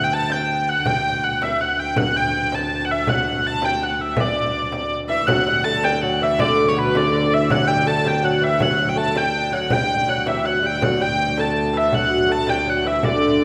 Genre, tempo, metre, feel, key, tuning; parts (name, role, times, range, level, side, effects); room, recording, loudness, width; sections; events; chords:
medieval dance; 108 BPM (dotted quarters); 6/8; straight; D major; A4 = 442 Hz
rich hurdy-gurdy; melody; 0.0-13.4 s; B4 to A5; -22 LUFS; equal
warm viola da gamba; drone; 0.0-13.4 s; D2; -28 LUFS; equal
frame drum; percussion; 0.3-13.2 s; -29 LUFS; equal
lute; second line; 5.1-13.4 s; B2 to A3; -25 LUFS; equal
wet concert hall reverb, RT60 2.2 s; -20 LUFS; mono
0.0-5.3 A section; 5.3-13.4 A section